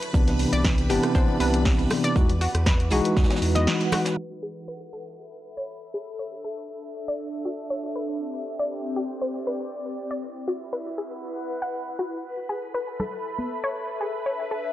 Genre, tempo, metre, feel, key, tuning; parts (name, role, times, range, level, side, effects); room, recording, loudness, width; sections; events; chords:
deep house; 119 BPM; 4/4; swing 53% on 16ths; A4 = 440 Hz
house drum kit; drums; 0.0-4.2 s; hi-hat, rim click, snare drum; -29 LUFS; equal; studio reverb
airy breathy pad; texture; 0.0-14.7 s; D3 to B5; -33 LUFS; left 1 dB; chorus, phaser, sidechain pumping
string machine, violins; texture; 0.0-4.2, 12.2-14.7 s; B4 to B5; -37 LUFS; equal; ensemble chorus, sidechain pumping
barky tine electric piano; stabs; 0.1-4.2 s; C3 to F#4; -25 LUFS; equal; medium stereo tremolo, sidechain pumping, tape echo
round analog bass; bass; 0.1-3.7 s; G1 to E2; -25 LUFS; equal; sidechain pumping
electronic kick drum; drums; 0.1-3.3 s; -22 LUFS; equal; studio reverb
jazz brush drum kit; drums; 0.1-4.2 s; hi-hat, snare drum; -35 LUFS; right 2 dB; high-pass filter on hats, studio reverb, high-pass filter on snare, high-pass filter on room
analog pluck; arpeggios; 0.5-14.6 s; F#4 to F#5; -31 LUFS; left 1 dB; chorus, cassette tape, sidechain pumping, analog delay
congas; percussion; 1.3-4.0, 13.0-13.5 s; -34 LUFS; equal
light reverb, small room ambience; dry, gritty hardware recording, low-pass filter; -23 LUFS; side -14 dB against mid
0.0-4.2 A section; 4.2-14.7 B section
break 3.7-4.2; band accent 3.7; filter sweep on synth arpeggio sound 4.2-14.7; filter sweep 4.2-14.7
0.0 Cmaj9; 2.2 Emaj9; 4.2 Amaj7sus2; 6.2 Dmaj7sus2; 8.0 Cmaj9; 10.2 Esus2; 12.2 Amaj7sus2